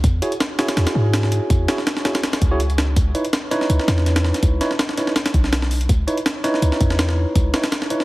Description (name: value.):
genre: drum and bass, jungle.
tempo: 164 BPM.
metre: 4/4.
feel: swing 53% on 16ths.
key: C# minor.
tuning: A4 = 443 Hz.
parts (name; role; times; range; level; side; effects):
warm 808-style bass; bass; 0.0-7.5 s; B1 to G#2; -18 LUFS; equal; none.
jungle sampler-style drum kit; drums; 0.0-8.0 s; hi-hat, kick drum, snare drum; -20 LUFS; equal; none.
tine electric piano; stabs; 0.2-8.0 s; D#4 to C#5; -23 LUFS; right 1 dB; vintage 12-bit sampler grit, dub echo.
room: light reverb.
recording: heavily compressed radio sound, vinyl crackle.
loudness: -17 LUFS.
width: side -19 dB against mid.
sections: 0.0-8.0 A section.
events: none.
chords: 0.0 E69; 3.0 C#m9.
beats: | 0.04 0.40 0.77 1.13 | 1.50 1.87 2.23 2.60 | 2.96 3.33 3.69 4.06 | 4.43 4.79 5.16 5.52 | 5.89 6.26 6.62 6.99 | 7.35 7.72.